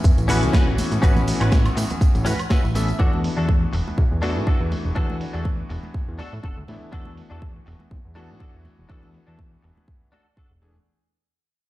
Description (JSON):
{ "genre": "nu-disco, nu disco", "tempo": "122 BPM", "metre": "4/4", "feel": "swing 54% on 16ths", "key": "unclear", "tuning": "A4 = 439 Hz", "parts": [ { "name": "warm electric grand piano", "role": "accompaniment", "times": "0.0-10.7 s", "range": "E3 to A4", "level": "-28 LUFS", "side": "left 2 dB", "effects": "slapback echo" }, { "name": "fat analog bass", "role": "bass", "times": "0.0-10.8 s", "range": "E1 to A2", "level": "-24 LUFS", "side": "equal", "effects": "none" }, { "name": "dusty soul sampler-style drum kit", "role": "drums", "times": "0.0-10.7 s", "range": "hi-hat, shaker, snare drum, woodblock", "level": "-30 LUFS", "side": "right 1 dB", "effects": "overdrive, low-pass filter on hats, studio reverb, low-pass filter on perc, low-pass filter on snare" }, { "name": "electronic kick drum", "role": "drums", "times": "0.0-10.5 s", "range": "none", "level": "-19 LUFS", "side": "equal", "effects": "studio reverb" }, { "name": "tambourine and congas", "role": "percussion", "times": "0.0-10.7 s", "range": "none", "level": "-32 LUFS", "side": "right 3 dB", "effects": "none" }, { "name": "direct-recorded clean electric guitar", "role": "riff", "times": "0.3-10.7 s", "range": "C#4 to F#5", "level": "-30 LUFS", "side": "left 1 dB", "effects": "ensemble chorus, low-pass filter, slapback echo" } ], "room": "light reverb, digital ambience", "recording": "played on a big sound system in a bare room, stone room reverb", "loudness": "-18 LUFS", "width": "side -16 dB against mid", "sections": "0.0-10.9 A section", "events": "fade-out 0.0-10.9; clean electric guitar fill 2.0-3.0", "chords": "0.0 A69; 3.0 E9sus4" }